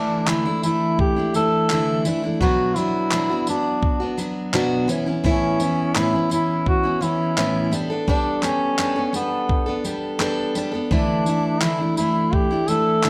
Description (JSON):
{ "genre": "acoustic pop", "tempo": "85 BPM", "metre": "4/4", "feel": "straight", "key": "D major", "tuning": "A4 = 440 Hz", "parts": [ { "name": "mellow duduk", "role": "melody", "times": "0.0-13.1 s", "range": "B3 to A4", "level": "-25 LUFS", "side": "equal", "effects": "none" }, { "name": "picked steel-string acoustic guitar", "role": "accompaniment", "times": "0.0-13.1 s", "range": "A2 to A4", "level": "-24 LUFS", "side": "equal", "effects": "none" }, { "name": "dusty soul sampler-style drum kit", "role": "drums", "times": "0.3-13.1 s", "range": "handclaps, kick drum, tambourine", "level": "-27 LUFS", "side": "equal", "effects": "none" } ], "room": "moderate recital hall reverb, RT60 1.3 s", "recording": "none", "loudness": "-21 LUFS", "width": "mono", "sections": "0.0-13.1 A section", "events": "none", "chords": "0.0 Dsus2; 2.4 Bm; 4.9 Aadd9; 7.7 Gadd9; 10.9 Dsus2" }